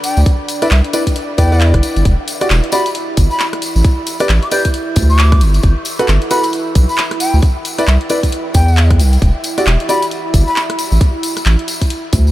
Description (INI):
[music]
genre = UK garage, two-step garage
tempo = 134 BPM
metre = 4/4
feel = swing 60% on 16ths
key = E minor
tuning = A4 = 438 Hz
[part]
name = breathy mellow silver concert flute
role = melody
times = 0.0-10.6 s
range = E5 to G6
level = -21 LUFS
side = left 1 dB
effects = analog delay
[part]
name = warm analog pad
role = sustained chords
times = 0.0-12.3 s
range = D4 to E5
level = -24 LUFS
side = right 2 dB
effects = chorus, sidechain pumping
[part]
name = garage drum kit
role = drums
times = 0.0-12.2 s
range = handclaps, hi-hat, rim click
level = -22 LUFS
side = equal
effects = none
[part]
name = tambourine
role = percussion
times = 0.0-12.3 s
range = none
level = -26 LUFS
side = left 3 dB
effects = none
[part]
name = saturated sub bass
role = bass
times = 0.2-12.3 s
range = E1 to E2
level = -10 LUFS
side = equal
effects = none
[part]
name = electronic kick drum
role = drums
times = 0.3-12.2 s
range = none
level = -13 LUFS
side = equal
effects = none
[part]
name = clear concert grand piano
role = stabs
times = 0.6-10.0 s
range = E4 to D5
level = -20 LUFS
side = equal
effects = analog delay
[sound]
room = light reverb, small room ambience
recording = none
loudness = -11 LUFS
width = side -15 dB against mid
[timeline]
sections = 0.0-12.3 A section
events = none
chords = 0.3 Cmaj9 (rootless); 2.1 Em; 3.6 Asus4 (rootless); 5.4 N.C.; 7.4 C; 9.2 Em; 10.8 Asus4 (rootless)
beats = | 0.26 0.71 1.16 1.61 | 2.05 2.50 2.95 3.40 | 3.85 4.29 4.74 5.19 | 5.64 6.08 6.53 6.98 | 7.43 7.88 8.32 8.77 | 9.22 9.67 10.11 10.56 | 11.01 11.46 11.90